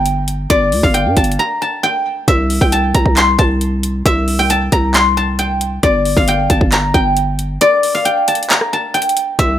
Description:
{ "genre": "hip hop, trap", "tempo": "135 BPM", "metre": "4/4", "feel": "half-time", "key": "G dorian", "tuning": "A4 = 440 Hz", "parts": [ { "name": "guzheng", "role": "melody", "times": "0.0-9.6 s", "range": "D5 to C6", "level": "-14 LUFS", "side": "left 1 dB", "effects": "none" }, { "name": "growling 808-style bass", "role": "bass", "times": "0.0-9.6 s", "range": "G1 to G2", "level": "-16 LUFS", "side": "equal", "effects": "none" }, { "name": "trap drum kit", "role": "drums", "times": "0.1-9.5 s", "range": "handclaps, hi-hat, kick drum, rim click", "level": "-16 LUFS", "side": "equal", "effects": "none" } ], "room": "little or no reverb", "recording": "none", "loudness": "-12 LUFS", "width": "side -11 dB against mid", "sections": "0.0-2.3 A section; 2.3-9.6 A section", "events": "break 1.4-2.3; kick muted 7.6-9.4", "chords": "0.0 G5; 2.3 C5; 5.8 Gm9", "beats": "0.06 | 0.50 0.94 1.39 1.83 | 2.28 2.72 3.17 3.61 | 4.06 4.50 4.94 5.39 | 5.83 6.28 6.72 7.17 | 7.61 8.06 8.50 8.94 | 9.39" }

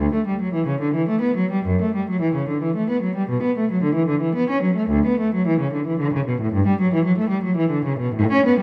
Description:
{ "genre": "classical, baroque-style suite movement for unaccompanied cello", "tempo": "111 BPM", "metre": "3/4", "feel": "uneven beats, rubato", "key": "D major", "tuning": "A4 = 439 Hz", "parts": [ { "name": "warm cello", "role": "solo", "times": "0.0-8.6 s", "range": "D2 to C#4", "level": "-21 LUFS", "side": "equal", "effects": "none" } ], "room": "wet recital hall reverb, RT60 1.4 s", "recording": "none", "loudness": "-21 LUFS", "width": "mono", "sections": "0.0-8.6 A section", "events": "none", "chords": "none", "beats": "0.53 1.09 | 1.67 2.24 2.77 | 3.30 3.83 4.36 | 4.92 5.47 6.00 | 6.53 7.05 7.58 | 8.15" }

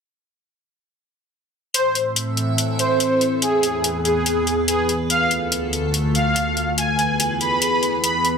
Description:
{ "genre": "heavy wobble dubstep", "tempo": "143 BPM", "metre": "4/4", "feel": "half-time", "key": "A harmonic minor", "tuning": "A4 = 441 Hz", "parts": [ { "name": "soft supersaw", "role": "melody", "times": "1.7-8.3 s", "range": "G#4 to B5", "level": "-20 LUFS", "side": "right 1 dB", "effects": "phaser, cassette tape, tape echo" }, { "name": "evolving wavetable pad", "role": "sustained chords", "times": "2.0-8.4 s", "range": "D2 to E5", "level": "-22 LUFS", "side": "equal", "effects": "phaser, built-in reverb" }, { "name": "electronic hi-hat", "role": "drums", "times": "1.7-8.3 s", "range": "none", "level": "-22 LUFS", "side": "left 2 dB", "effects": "none" } ], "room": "light reverb, digital ambience", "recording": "none", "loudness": "-18 LUFS", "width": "side -6 dB against mid", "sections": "1.7-8.4 A section", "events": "none", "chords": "1.7 Am; 3.4 E; 5.1 Dm; 6.8 E", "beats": "| 1.74 2.16 2.58 3.00 | 3.42 3.84 4.26 4.68 | 5.10 5.52 5.94 6.36 | 6.78 7.20 7.62 8.04" }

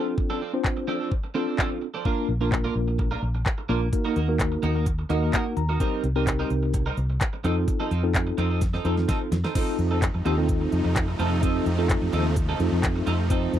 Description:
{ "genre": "dance-pop", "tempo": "128 BPM", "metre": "4/4", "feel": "straight", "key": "unclear", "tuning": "A4 = 439 Hz", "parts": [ { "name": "mellow tine electric piano", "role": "accompaniment", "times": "0.0-13.6 s", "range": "Bb3 to Bb5", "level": "-27 LUFS", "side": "left 1 dB", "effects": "medium stereo tremolo, sidechain pumping" }, { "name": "twelve-string electric guitar", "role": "riff", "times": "0.0-13.6 s", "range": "F3 to Bb4", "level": "-31 LUFS", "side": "right 5 dB", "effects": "lush chorus" }, { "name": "pop drum kit", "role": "drums", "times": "0.2-13.6 s", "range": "crash cymbal, handclaps, hi-hat, kick drum, snare drum", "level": "-26 LUFS", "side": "equal", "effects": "none" }, { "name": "vintage muted fingered electric bass", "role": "bass", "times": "2.3-13.6 s", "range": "Bb1 to F2", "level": "-25 LUFS", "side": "equal", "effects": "sidechain pumping" }, { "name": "supersaw chords", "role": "sustained chords", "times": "9.6-13.6 s", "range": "C3 to Eb4", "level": "-32 LUFS", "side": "equal", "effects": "sidechain pumping" } ], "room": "little or no reverb", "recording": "dry, close 1970s-style studio recording", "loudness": "-22 LUFS", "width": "side -11 dB against mid", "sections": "0.0-9.6 A section; 9.6-13.6 B section", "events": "tine electric piano fill 4.9-5.8; drum fill 8.6-9.6", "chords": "0.0 Dm7; 2.1 Bb; 3.9 Ebm; 5.8 Cm7; 7.4 F7", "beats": "| 0.18 0.65 1.11 1.58 | 2.05 2.52 2.99 3.46 | 3.93 4.40 4.87 5.33 | 5.80 6.27 6.74 7.21 | 7.68 8.15 8.62 9.08 | 9.55 10.02 10.49 10.96 | 11.43 11.90 12.37 12.83 | 13.30" }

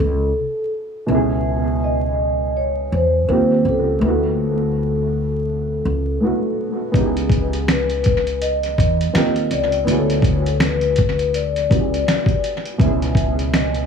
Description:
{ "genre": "lo-fi hip hop", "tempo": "82 BPM", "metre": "4/4", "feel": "swing 60% on 16ths", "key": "unclear", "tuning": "A4 = 436 Hz", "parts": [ { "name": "vibraphone with soft mallets", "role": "melody", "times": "0.0-13.9 s", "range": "G#4 to E5", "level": "-22 LUFS", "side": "left 2 dB", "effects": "low-pass filter, tape echo" }, { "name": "dark upright piano", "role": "accompaniment", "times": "0.0-13.9 s", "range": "B2 to A#4", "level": "-23 LUFS", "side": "right 3 dB", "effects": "cassette tape, low-pass filter, tape echo" }, { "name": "upright bass", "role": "bass", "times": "0.0-13.9 s", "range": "C#2 to E2", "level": "-21 LUFS", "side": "left 1 dB", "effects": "none" }, { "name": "dusty soul sampler-style drum kit", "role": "drums", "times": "6.9-13.9 s", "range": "finger snaps, hi-hat, kick drum, snare drum", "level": "-20 LUFS", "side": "equal", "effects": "overdrive, tape echo" } ], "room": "light reverb, small room ambience", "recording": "echo-heavy mix, vinyl crackle, studio ambience", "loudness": "-16 LUFS", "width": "side -6 dB against mid", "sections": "0.0-13.9 A section", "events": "none", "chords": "0.0 D69 (rootless); 1.1 C#m7; 3.3 D#69; 4.0 D69; 6.9 C#m7; 9.1 D#69; 9.9 D69; 12.8 C#m7", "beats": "0.36 | 1.09 1.82 2.56 3.29 | 4.02 4.75 5.48 6.21 | 6.95 7.68 8.41 9.14 | 9.87 10.61 11.34 12.07 | 12.80 13.53" }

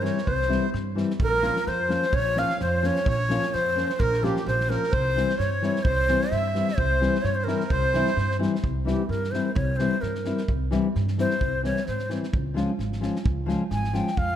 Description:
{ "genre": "balkan folk, Balkan wedding band", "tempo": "129 BPM", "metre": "2/4", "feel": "swing 56% on 16ths", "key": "C phrygian dominant", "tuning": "A4 = 439 Hz", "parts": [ { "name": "breathy bright ney", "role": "melody", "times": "0.0-14.4 s", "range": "G4 to Ab5", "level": "-26 LUFS", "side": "equal", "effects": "none" }, { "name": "accordion", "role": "second line", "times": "0.0-8.4 s", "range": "G4 to F5", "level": "-30 LUFS", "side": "right 3 dB", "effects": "none" }, { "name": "nylon-string guitar", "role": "accompaniment", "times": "0.0-14.1 s", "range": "E3 to F4", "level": "-28 LUFS", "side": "left 3 dB", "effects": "none" }, { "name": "upright bass", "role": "bass", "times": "0.0-14.4 s", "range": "Ab1 to Ab2", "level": "-28 LUFS", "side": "right 1 dB", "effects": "none" }, { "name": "loose indie drum kit", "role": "percussion", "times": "0.1-14.3 s", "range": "kick drum, snare drum", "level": "-31 LUFS", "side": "right 1 dB", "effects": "none" } ], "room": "moderate concert hall reverb, RT60 1.9 s", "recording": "none", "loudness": "-22 LUFS", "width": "side -10 dB against mid", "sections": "0.0-1.2 A section; 1.2-8.6 A section; 8.6-14.4 B section", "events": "ney solo 8.6-14.4", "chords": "0.0 C; 1.2 Bbm; 4.9 C; 12.3 Db", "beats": "| 0.28 0.74 | 1.21 1.67 | 2.14 2.60 | 3.07 3.53 | 4.00 4.46 | 4.93 5.39 | 5.86 6.32 | 6.78 7.25 | 7.71 8.17 | 8.64 9.10 | 9.56 10.03 | 10.49 10.95 | 11.41 11.87 | 12.33 12.79 | 13.25 13.71 | 14.17" }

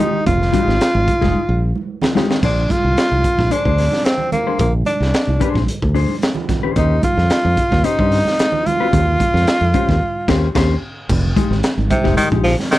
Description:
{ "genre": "funk", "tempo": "111 BPM", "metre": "4/4", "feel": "straight", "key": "unclear", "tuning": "A4 = 440 Hz", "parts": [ { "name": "breathy tenor saxophone", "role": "melody", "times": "0.0-12.8 s", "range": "C3 to F4", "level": "-18 LUFS", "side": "equal", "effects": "none" }, { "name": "mellow electric guitar", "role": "accompaniment", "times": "0.0-12.5 s", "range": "Ab3 to C5", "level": "-20 LUFS", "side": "left 7 dB", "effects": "none" }, { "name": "crunchy breakbeat drum kit", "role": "drums", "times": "0.0-12.8 s", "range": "crash cymbal, hi-hat, kick drum, snare drum", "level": "-20 LUFS", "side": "equal", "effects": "none" }, { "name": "fingered electric bass", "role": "bass", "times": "0.3-12.5 s", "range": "F1 to G2", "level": "-17 LUFS", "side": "equal", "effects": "none" }, { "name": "congas", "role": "percussion", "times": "0.3-12.8 s", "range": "none", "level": "-25 LUFS", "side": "right 5 dB", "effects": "none" } ], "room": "little or no reverb", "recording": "none", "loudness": "-14 LUFS", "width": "side -16 dB against mid", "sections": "0.0-2.4 A section; 2.4-11.1 B section; 11.1-12.8 A section", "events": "drum fill 1.3-2.4; band accent 10.0-11.1", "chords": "0.0 Fm9; 2.4 Bb9; 6.8 Eb13; 11.1 Fm9", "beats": "| 0.27 0.81 1.35 1.89 | 2.43 2.97 3.51 4.06 | 4.60 5.14 5.68 6.22 | 6.76 7.31 7.85 8.39 | 8.93 9.47 10.01 10.55 | 11.09 11.63 12.18 12.71" }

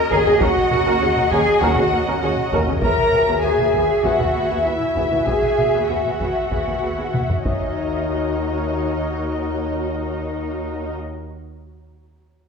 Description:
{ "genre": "cinematic, suspense film score", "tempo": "99 BPM", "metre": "4/4", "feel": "straight", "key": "Eb phrygian", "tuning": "A4 = 439 Hz", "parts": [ { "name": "muted symphonic violin section", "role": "melody", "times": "0.0-10.9 s", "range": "Db5 to E5", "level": "-27 LUFS", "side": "left 4 dB", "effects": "none" }, { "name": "muted studio violin section", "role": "second line", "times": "0.0-10.9 s", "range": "Eb5 to Bb5", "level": "-26 LUFS", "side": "left 3 dB", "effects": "none" }, { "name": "bubbling stepped-filter texture", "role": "sustained chords", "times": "0.0-10.9 s", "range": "Gb4 to Bb5", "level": "-29 LUFS", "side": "equal", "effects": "chorus, built-in reverb" }, { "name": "warm French horn section", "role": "sustained chords", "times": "0.0-10.9 s", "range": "Eb4 to Bb4", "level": "-24 LUFS", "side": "left 2 dB", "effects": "none" }, { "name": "muted symphonic cello section", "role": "bass", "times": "0.0-10.9 s", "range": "Eb4 to Bb4", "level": "-24 LUFS", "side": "right 3 dB", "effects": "none" }, { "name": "muted symphonic viola section", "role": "accompaniment", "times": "0.1-10.9 s", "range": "B3 to Bb4", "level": "-27 LUFS", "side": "equal", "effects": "none" }, { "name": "muted symphonic double bass section", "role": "bass", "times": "0.1-10.9 s", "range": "Eb2", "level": "-27 LUFS", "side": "right 1 dB", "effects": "none" }, { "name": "taiko ensemble", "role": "drums", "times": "0.1-8.6 s", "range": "none", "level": "-26 LUFS", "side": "equal", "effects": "none" } ], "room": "wet recital hall reverb, RT60 1.4 s", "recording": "heard from further back in the room", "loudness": "-17 LUFS", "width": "side -5 dB against mid", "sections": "0.0-7.8 A section; 7.8-10.2 B section", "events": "drum fill 7.1-7.8", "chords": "0.0 Ebm7; 2.8 Eadd9/Eb; 7.5 Ebm7", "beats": "| 0.42 1.02 1.62 2.22 | 2.83 3.43 4.04 4.65 | 5.27 5.89 6.51 7.14 | 7.76 8.37 8.97 9.58" }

